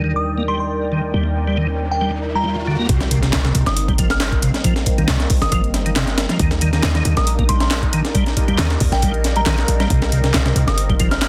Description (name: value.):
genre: breakbeat, breaks.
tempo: 137 BPM.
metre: 4/4.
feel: straight.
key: C minor.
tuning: A4 = 440 Hz.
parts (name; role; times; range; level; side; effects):
phased analog pad; sustained chords; 0.0-11.3 s; Eb3 to G5; -29 LUFS; equal; phaser, chorus, sidechain pumping.
tonewheel organ; riff; 0.0-11.1 s; C3 to Bb3; -24 LUFS; equal; chorus vibrato, slow rotary speaker.
bell-like tine electric piano; stabs; 0.0-2.9 s; G3 to Bb4; -30 LUFS; equal; low-pass filter, tape echo.
warm 808-style bass; bass; 0.0-11.3 s; G1 to Eb2; -23 LUFS; equal; none.
riser and impact; sound effects; 1.0-4.6 s; none; -33 LUFS; equal; none.
glassy synth bell; melody; 0.2-11.3 s; G5 to F6; -27 LUFS; equal; chorus, small speaker sound, tape echo.
breakbeat sampler-style drum kit; drums; 2.9-11.3 s; hi-hat, kick drum, snare drum; -22 LUFS; equal; none.
house drum kit; drums; 2.9-11.3 s; handclaps, hi-hat; -30 LUFS; equal; overdrive.
room: light reverb.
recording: dense, heavily limited modern master.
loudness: -18 LUFS.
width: mono.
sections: 0.0-2.9 A section; 2.9-11.3 B section.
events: riser 1.0-2.9; drop 2.9-11.3; impact 2.9-4.6.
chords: 0.0 Ebmaj7; 2.9 Cm7; 6.4 Ebmaj7; 9.9 Cm7.